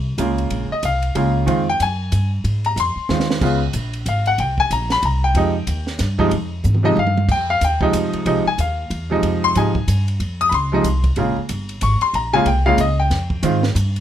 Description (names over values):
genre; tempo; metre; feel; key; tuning
jazz, small-group swing and bop; 186 BPM; 3/4; swing 61% on 8ths; F minor; A4 = 440 Hz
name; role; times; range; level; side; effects
upright bass; bass; 0.0-14.0 s; G1 to Ab2; -20 LUFS; equal; none
clear baby grand piano; accompaniment; 0.2-13.7 s; C3 to Eb6; -18 LUFS; equal; none
compact cocktail drum kit; drums; 0.2-14.0 s; crash cymbal, hi-hat, kick drum, ride cymbal, snare drum, toms; -28 LUFS; right 2 dB; none
room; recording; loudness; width
little or no reverb; close, detailed microphones; -16 LUFS; side -10 dB against mid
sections
0.0-7.3 A section; 7.3-14.0 A section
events
drum fill 3.1-3.4, 6.6-7.3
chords
0.0 Bbm7; 1.5 Fm7; 3.4 Db7; 4.4 Abmaj9 (rootless); 5.4 Fm7; 11.2 Bbm7; 13.1 Fm7